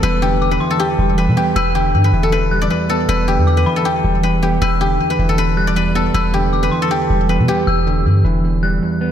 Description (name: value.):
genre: hip hop.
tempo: 157 BPM.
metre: 4/4.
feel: half-time.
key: E minor.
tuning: A4 = 442 Hz.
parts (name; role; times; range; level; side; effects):
guzheng; melody; 0.0-9.1 s; G4 to D5; -18 LUFS; left 2 dB; ping-pong delay.
dark detuned synth bell; second line; 0.0-8.8 s; B5 to F#6; -26 LUFS; left 2 dB; chorus, ping-pong delay.
mellow electric guitar; accompaniment; 0.0-9.1 s; E2 to B3; -19 LUFS; right 2 dB; none.
warm 808-style bass; bass; 0.0-8.8 s; E1 to B2; -17 LUFS; equal; none.
room: moderate plate reverb, RT60 3.0 s.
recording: dreamy mix soaked in reverb.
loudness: -13 LUFS.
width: side -9 dB against mid.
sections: 0.0-9.1 A section.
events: none.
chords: 0.0 Em7.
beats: | 0.03 0.41 0.80 1.18 | 1.56 1.94 2.32 2.71 | 3.09 3.47 3.85 4.24 | 4.62 5.00 5.38 5.76 | 6.14 6.53 6.91 7.29 | 7.67 8.06 8.44 8.82.